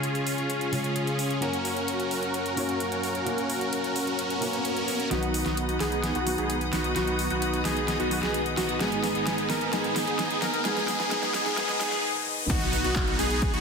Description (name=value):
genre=EDM, festival progressive house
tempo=130 BPM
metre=4/4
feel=straight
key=unclear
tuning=A4 = 440 Hz
part: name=felt-muted upright piano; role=accompaniment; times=0.0-12.5 s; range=G#2 to C#5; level=-33 LUFS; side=right 1 dB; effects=sidechain pumping, dub echo
part: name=rich chamber string section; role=sustained chords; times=0.0-13.6 s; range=F#2 to D#6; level=-35 LUFS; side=left 1 dB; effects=sidechain pumping
part: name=supersaw chords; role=riff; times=0.0-13.6 s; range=B3 to A#4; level=-28 LUFS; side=equal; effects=sidechain pumping, low-pass filter, dub echo
part: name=big-room dance drum kit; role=drums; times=0.0-13.6 s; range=crash cymbal, handclaps, hi-hat, snare drum, toms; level=-33 LUFS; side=equal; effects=overdrive
part: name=swell, riser and impact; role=sound effects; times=4.3-13.6 s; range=none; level=-35 LUFS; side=left 2 dB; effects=none
part: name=wide unison lead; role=arpeggios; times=5.1-13.6 s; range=F#4 to A#4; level=-32 LUFS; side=equal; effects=sidechain pumping, dub echo
part: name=saturated sub bass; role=bass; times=5.1-13.6 s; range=G#1 to B1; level=-34 LUFS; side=equal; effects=sidechain pumping
part: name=electronic kick drum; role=drums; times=12.5-13.5 s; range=none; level=-28 LUFS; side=equal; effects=overdrive
room=wet digital room reverb, RT60 1.2 s, digital ambience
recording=dense, heavily limited modern master, high-pass filter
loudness=-24 LUFS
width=side -5 dB against mid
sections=0.0-5.1 A section; 5.1-12.5 B section; 12.5-13.6 C section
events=swell 4.3-5.1; build-up 5.1-12.5; drum fill 5.1-12.0, 12.2-12.5; riser 5.1-12.5; filter sweep on supersaw synth 5.1-12.5; filter sweep on analog synth lead 5.1-12.5; filter sweep 5.1-12.5; drop 12.5-13.6; impact 12.5-13.6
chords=0.0 C#; 1.4 F#; 5.1 B; 8.8 G#m; 12.5 B